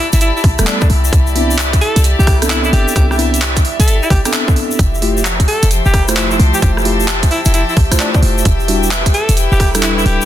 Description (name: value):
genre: UK garage, two-step garage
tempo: 131 BPM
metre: 4/4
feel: swing 65% on 16ths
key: unclear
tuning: A4 = 440 Hz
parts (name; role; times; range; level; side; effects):
- bright alto saxophone; melody; 0.0-10.3 s; D4 to A4; -20 LUFS; equal; ping-pong delay
- airy breathy pad; sustained chords; 0.0-10.3 s; E4 to E5; -24 LUFS; equal; chorus, sidechain pumping
- warm studio string section; texture; 0.0-10.3 s; F3 to B5; -23 LUFS; left 2 dB; sidechain pumping
- short 808-style bass; bass; 0.1-10.2 s; D1 to C2; -14 LUFS; equal; none
- garage drum kit; drums; 0.1-10.2 s; handclaps, hi-hat, rim click; -19 LUFS; right 1 dB; soft clipping on snare
- tube shaker; percussion; 0.1-10.3 s; none; -24 LUFS; left 5 dB; none
- electronic kick drum; drums; 0.4-9.7 s; none; -14 LUFS; equal; none
- mellow tine electric piano; stabs; 0.6-10.3 s; G3 to C5; -19 LUFS; right 1 dB; medium stereo tremolo, ping-pong delay
room: light reverb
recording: dense, heavily limited modern master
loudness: -10 LUFS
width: side -12 dB against mid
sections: 0.0-10.3 A section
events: none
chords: 0.0 Gadd9; 0.9 Cmaj9; 4.8 Fmaj9; 8.5 Em7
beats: 0.21 0.67 | 1.13 1.58 2.04 2.50 | 2.96 3.42 3.88 4.33 | 4.79 5.25 5.71 6.17 | 6.62 7.08 7.54 8.00 | 8.46 8.91 9.37 9.83